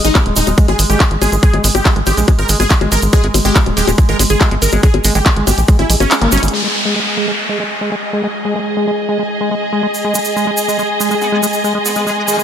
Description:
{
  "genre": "psychedelic trance",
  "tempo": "141 BPM",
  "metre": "4/4",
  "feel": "straight",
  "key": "unclear",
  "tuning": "A4 = 440 Hz",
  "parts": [
    { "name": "supersaw stab", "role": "melody", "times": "0.0-6.4 s", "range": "C#4 to A#4", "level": "-20 LUFS", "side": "right 1 dB", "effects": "phaser, sidechain pumping, low-pass filter, dub echo" },
    { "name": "overtone-sweeping drone", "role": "sustained chords", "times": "0.0-12.4 s", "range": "G#3", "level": "-22 LUFS", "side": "equal", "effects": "chorus, built-in reverb, sidechain pumping" },
    { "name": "liquid acid bass", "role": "riff", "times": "0.0-12.4 s", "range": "G3 to A#3", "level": "-20 LUFS", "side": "moving between left 4 dB and right 5 dB", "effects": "chorus, auto-pan, sidechain pumping, digital delay" },
    { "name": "tight sequencer bass", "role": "bass", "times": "0.0-6.5 s", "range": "D#1 to A#1", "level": "-15 LUFS", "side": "equal", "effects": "none" },
    { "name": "garage drum kit", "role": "drums", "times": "0.0-6.6 s", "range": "bongos, crash cymbal, handclaps, hi-hat", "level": "-17 LUFS", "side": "left 3 dB", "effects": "low-pass filter on hats, low-pass filter on snare, low-pass filter on perc, low-pass filter on cymbals" },
    { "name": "egg shaker", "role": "percussion", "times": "0.0-6.5, 9.9-12.4 s", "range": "none", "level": "-22 LUFS", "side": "right 4 dB", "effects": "none" },
    { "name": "electronic kick drum", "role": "drums", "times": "0.2-5.8 s", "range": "none", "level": "-11 LUFS", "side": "equal", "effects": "none" },
    { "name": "zap and downlifter", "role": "sound effects", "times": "6.2-9.9 s", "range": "none", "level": "-20 LUFS", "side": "equal", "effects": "none" },
    { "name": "muted studio string section", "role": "texture", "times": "6.5-12.4 s", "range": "G#4 to G#5", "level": "-19 LUFS", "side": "equal", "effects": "sidechain pumping" },
    { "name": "metallic wobble bass", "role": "second line", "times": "11.2-12.4 s", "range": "D#3 to B3", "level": "-25 LUFS", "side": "left 4 dB", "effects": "analog chorus, sidechain pumping, high-pass filter, digital delay" }
  ],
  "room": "light reverb, digital ambience",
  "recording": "none",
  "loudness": "-11 LUFS",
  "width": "side -9 dB against mid",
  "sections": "0.0-6.5 A section; 6.5-12.4 B section",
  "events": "kick drops out 6.1-6.5; band accent 6.1; drum fill 6.3; filter sweep on acid bass 6.5-12.4; filter sweep on synth drone 6.5-12.4",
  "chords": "0.0 G#5"
}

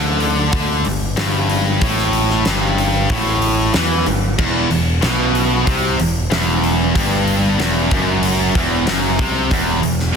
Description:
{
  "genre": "hard rock",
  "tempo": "94 BPM",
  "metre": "4/4",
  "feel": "straight",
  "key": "unclear",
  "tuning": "A4 = 440 Hz",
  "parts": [
    { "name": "overdriven electric guitar", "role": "riff", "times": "0.0-10.1 s", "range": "E2 to E3", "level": "-21 LUFS", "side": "right 11 dB", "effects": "spring reverb" },
    { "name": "tight distorted guitar", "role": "riff", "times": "0.0-10.1 s", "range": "E2 to E3", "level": "-20 LUFS", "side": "left 10 dB", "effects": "distortion" },
    { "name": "growling picked electric bass", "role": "bass", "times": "0.0-10.1 s", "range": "E1 to E2", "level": "-21 LUFS", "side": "equal", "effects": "overdrive" },
    { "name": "huge arena drum kit", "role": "drums", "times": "0.2-10.1 s", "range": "crash cymbal, hi-hat, kick drum, snare drum", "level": "-20 LUFS", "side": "equal", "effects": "none" },
    { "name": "high-gain distorted guitar", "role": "riff", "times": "4.4-10.2 s", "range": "E2 to C3", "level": "-22 LUFS", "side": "right 1 dB", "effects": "distortion" }
  ],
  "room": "light reverb, studio ambience",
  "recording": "dense, heavily limited modern master",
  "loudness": "-14 LUFS",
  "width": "side -6 dB against mid",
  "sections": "0.0-10.2 A section",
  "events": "none",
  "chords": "0.0 G5; 4.4 E5"
}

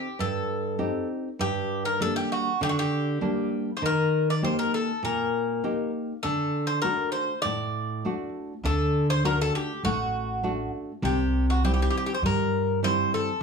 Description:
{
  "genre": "greek folk, Greek bouzouki band",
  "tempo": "100 BPM",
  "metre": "4/4",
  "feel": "straight",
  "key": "D phrygian dominant",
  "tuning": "A4 = 440 Hz",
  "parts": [
    { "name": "Greek bouzouki", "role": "melody", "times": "0.0-13.4 s", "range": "F#4 to D5", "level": "-27 LUFS", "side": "left 3 dB", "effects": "none" },
    { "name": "nylon-string guitar", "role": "accompaniment", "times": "0.0-13.3 s", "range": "G2 to G4", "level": "-28 LUFS", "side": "right 1 dB", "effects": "none" },
    { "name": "upright bass", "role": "bass", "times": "8.6-13.4 s", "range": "A1 to G2", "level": "-27 LUFS", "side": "equal", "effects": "none" }
  ],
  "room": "light reverb",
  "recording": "small room ambience",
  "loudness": "-24 LUFS",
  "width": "side -5 dB against mid",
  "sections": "0.0-8.6 A section; 8.6-13.4 A section",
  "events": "none",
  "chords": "0.0 Cm; 1.4 Gm; 3.8 Eb; 6.2 D; 11.0 C"
}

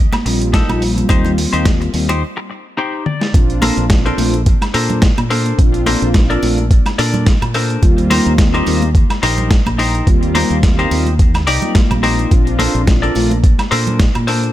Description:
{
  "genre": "nu-disco, nu disco",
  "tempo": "107 BPM",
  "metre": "4/4",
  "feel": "swing 55% on 16ths",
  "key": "Bb major",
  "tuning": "A4 = 439 Hz",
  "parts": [
    { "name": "modern bright fingered electric bass", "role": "bass", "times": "0.0-14.5 s", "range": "Bb1 to Bb2", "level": "-18 LUFS", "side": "equal", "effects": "none" },
    { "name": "semi-hollow electric guitar", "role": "riff", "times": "0.1-14.5 s", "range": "D4 to G5", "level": "-20 LUFS", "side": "left 3 dB", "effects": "lush chorus, vintage 12-bit sampler grit, digital delay" },
    { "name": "dusty soul sampler-style drum kit", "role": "drums", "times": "0.1-14.5 s", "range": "hi-hat, snare drum, toms, woodblock", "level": "-20 LUFS", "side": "equal", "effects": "overdrive, studio reverb" },
    { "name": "congas", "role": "percussion", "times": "0.1-14.3 s", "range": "none", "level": "-24 LUFS", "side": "right 1 dB", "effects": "none" },
    { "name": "mellow synth brass", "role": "accompaniment", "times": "0.2-13.3 s", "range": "G3 to F4", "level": "-19 LUFS", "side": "equal", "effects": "chorus, cassette tape, digital delay" },
    { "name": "electronic kick drum", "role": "drums", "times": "0.5-14.1 s", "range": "none", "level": "-12 LUFS", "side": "equal", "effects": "overdrive, studio reverb" }
  ],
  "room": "digital ambience",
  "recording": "none",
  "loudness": "-12 LUFS",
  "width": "side -14 dB against mid",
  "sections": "0.0-3.3 A section; 3.3-14.5 B section",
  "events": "break 2.2-3.3; clean electric guitar fill 2.5-3.3; drum fill 3.1; drop 3.3-14.5",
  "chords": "0.0 Eb6; 3.3 Bbmaj9; 7.8 Eb6; 12.3 Bbmaj9"
}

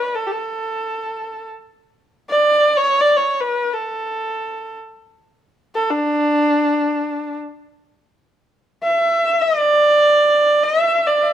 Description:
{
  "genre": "Persian modal ensemble",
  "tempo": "free time",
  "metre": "none",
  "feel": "none",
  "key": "D avaz esfahan",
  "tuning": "A4 = 445 Hz",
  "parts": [
    { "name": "rich kamancheh", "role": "solo", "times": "0.0-11.3 s", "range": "D4 to E5", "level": "-15 LUFS", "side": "right 1 dB", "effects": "none" }
  ],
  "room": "moderate stone room reverb, RT60 1.0 s",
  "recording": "band playing live in one room",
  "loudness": "-15 LUFS",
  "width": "side -10 dB against mid",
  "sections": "0.0-8.4 A section; 8.4-11.3 A section",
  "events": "none",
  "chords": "none"
}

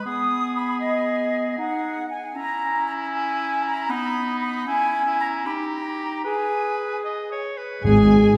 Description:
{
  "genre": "quick classical-period movement for symphony orchestra",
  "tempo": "77 BPM (dotted quarters)",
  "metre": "6/8",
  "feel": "straight",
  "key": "G# minor",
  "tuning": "A4 = 440 Hz",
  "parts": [
    { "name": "bright oboe", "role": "second line", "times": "0.0-8.3 s", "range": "D#4 to D#5", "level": "-33 LUFS", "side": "equal", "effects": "none" },
    { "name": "clear clarinet", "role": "second line", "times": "0.0-8.3 s", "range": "B3 to G#4", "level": "-30 LUFS", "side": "equal", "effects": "none" },
    { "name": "small flute group", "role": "second line", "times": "0.0-8.3 s", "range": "D#5 to D#6", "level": "-28 LUFS", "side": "equal", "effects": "none" },
    { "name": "muted studio violin section", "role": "melody", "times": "7.8-8.3 s", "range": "G#5", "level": "-31 LUFS", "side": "equal", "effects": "none" },
    { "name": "muted studio viola section", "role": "accompaniment", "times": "7.8-8.3 s", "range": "G#3", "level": "-19 LUFS", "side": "equal", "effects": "none" },
    { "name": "mellow French horn section", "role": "sustained chords", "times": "7.8-8.3 s", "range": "G#3", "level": "-21 LUFS", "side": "equal", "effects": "none" },
    { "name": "dark trumpet", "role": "stabs", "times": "7.8-8.4 s", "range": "G#4", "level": "-24 LUFS", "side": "equal", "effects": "none" },
    { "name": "muted studio cello section", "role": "bass", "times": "7.8-8.3 s", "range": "G#2", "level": "-25 LUFS", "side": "equal", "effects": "none" },
    { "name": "timpani", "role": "percussion", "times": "7.8-8.4 s", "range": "G#2", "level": "-24 LUFS", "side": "equal", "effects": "none" },
    { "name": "muted studio double bass section", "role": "bass", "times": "7.9-8.3 s", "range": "G#1", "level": "-27 LUFS", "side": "equal", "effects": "none" }
  ],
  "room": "wet scoring stage reverb, RT60 1.9 s",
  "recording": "heard from further back in the room",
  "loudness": "-23 LUFS",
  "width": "mono",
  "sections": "0.0-7.8 A section",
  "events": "none",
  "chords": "0.1 G#m/B; 1.6 G#5/D#; 2.4 C#m; 3.9 B; 4.7 C#m; 5.5 D#; 6.3 G#m; 7.8 N.C."
}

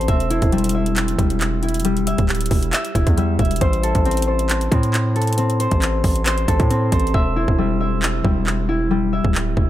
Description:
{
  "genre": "hip hop, trap",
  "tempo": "136 BPM",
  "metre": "4/4",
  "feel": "half-time",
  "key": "E minor",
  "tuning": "A4 = 439 Hz",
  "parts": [
    { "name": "concert harp", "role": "arpeggios", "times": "0.0-9.7 s", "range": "G3 to E5", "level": "-21 LUFS", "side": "left 2 dB", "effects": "dub echo" },
    { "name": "distorted 808-style bass", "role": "bass", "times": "0.0-9.7 s", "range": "D1 to A2", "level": "-21 LUFS", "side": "equal", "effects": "distortion" },
    { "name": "trap drum kit", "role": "drums", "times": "0.0-9.7 s", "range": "handclaps, hi-hat, kick drum", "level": "-20 LUFS", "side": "equal", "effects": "none" }
  ],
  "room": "digital ambience",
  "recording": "echo-heavy mix",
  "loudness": "-16 LUFS",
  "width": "side -13 dB against mid",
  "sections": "0.0-9.7 A section",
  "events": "hi-hats muted 7.1-9.7",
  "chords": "0.1 Em; 3.6 Am; 7.1 Em"
}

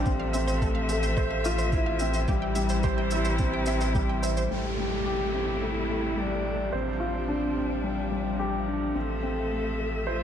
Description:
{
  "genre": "piano and strings electronica",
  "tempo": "108 BPM",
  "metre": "4/4",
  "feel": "straight",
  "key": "A minor",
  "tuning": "A4 = 439 Hz",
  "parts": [
    { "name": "warm string quartet", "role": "sustained chords", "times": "0.0-10.2 s", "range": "C3 to E5", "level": "-33 LUFS", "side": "left 1 dB", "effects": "sidechain pumping" },
    { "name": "dark upright piano", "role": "riff", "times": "0.0-10.2 s", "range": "G3 to C5", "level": "-30 LUFS", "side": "left 2 dB", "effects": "analog delay" },
    { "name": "round analog bass", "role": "bass", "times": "0.0-10.2 s", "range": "A1", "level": "-31 LUFS", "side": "right 1 dB", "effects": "sidechain pumping" },
    { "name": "electronic kick drum", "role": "drums", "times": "0.1-4.1 s", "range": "none", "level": "-28 LUFS", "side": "right 1 dB", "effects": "none" },
    { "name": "shaker", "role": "drums", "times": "0.1-4.5 s", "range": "none", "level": "-40 LUFS", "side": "equal", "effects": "low-pass filter on perc, low-pass filter on room" },
    { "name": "wide unison pluck", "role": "arpeggios", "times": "0.2-4.5 s", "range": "G4 to G5", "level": "-35 LUFS", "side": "right 3 dB", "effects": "sidechain pumping, analog delay" },
    { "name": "dark viola", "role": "melody", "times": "4.5-10.2 s", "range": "C4 to A4", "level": "-33 LUFS", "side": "right 1 dB", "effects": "analog delay" },
    { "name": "downlifter", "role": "sound effects", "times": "4.5-9.0 s", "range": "none", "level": "-37 LUFS", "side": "equal", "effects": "none" }
  ],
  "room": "moderate plate reverb, RT60 1.6 s",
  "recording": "dreamy mix soaked in reverb",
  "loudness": "-25 LUFS",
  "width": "side -9 dB against mid",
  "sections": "0.0-4.5 A section; 4.5-10.2 B section",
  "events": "none",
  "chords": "0.1 Fmaj7/A; 2.3 Am7; 6.7 G7sus4/A; 9.0 Fmaj7/A"
}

